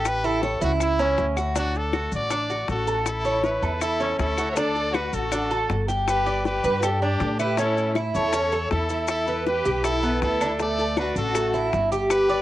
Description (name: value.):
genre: latin, Cuban son and guajira.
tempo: 159 BPM.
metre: 4/4.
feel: straight.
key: D major.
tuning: A4 = 440 Hz.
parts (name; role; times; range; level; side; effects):
brilliant trumpet; melody; 0.0-12.4 s; E4 to E5; -28 LUFS; left 1 dB; cassette tape.
Cuban tres; arpeggios; 0.0-12.4 s; A3 to D5; -25 LUFS; right 2 dB; cassette tape.
upright bass; bass; 0.0-12.4 s; G1 to A2; -28 LUFS; equal; none.
bongos; percussion; 0.1-12.4 s; none; -30 LUFS; left 6 dB; none.
claves; percussion; 0.1-12.3 s; none; -35 LUFS; left 6 dB; none.
maracas; percussion; 0.1-12.4 s; none; -39 LUFS; left 7 dB; none.
rich studio violin section; second line; 2.7-12.4 s; D4 to C#5; -30 LUFS; left 2 dB; cassette tape.
room: light reverb, small room ambience.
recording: home recording on cassette.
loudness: -21 LUFS.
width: side -14 dB against mid.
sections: 0.0-3.1 A section; 3.1-12.4 B section.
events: none.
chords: 0.1 A; 1.6 D; 3.1 A; 4.6 D; 6.1 G; 7.6 A; 9.1 Em; 10.6 Dadd9.